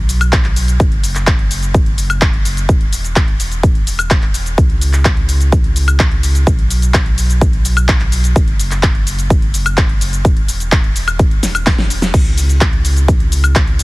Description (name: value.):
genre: EDM, festival progressive house.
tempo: 127 BPM.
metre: 4/4.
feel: straight.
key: C# minor.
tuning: A4 = 435 Hz.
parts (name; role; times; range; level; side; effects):
saturated sub bass; bass; 0.0-13.8 s; E1 to C#2; -16 LUFS; equal; sidechain pumping.
big-room dance drum kit; drums; 0.1-13.8 s; crash cymbal, handclaps, hi-hat, shaker, snare drum, woodblock; -19 LUFS; left 1 dB; none.
electronic kick drum; drums; 0.3-13.7 s; none; -12 LUFS; equal; none.
room: little or no reverb.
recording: heavily compressed radio sound, multiband compression.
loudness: -11 LUFS.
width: side -21 dB against mid.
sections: 0.0-12.1 A section; 12.1-13.8 A section.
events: drop 0.0-12.1, 12.1-13.8; drum fill 11.4-12.1.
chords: none.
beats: 0.33 | 0.80 1.27 1.74 2.22 | 2.69 3.16 3.63 4.11 | 4.58 5.05 5.52 6.00 | 6.47 6.94 7.41 7.89 | 8.36 8.83 9.30 9.78 | 10.25 10.72 11.19 11.67 | 12.14 12.61 13.08 13.55.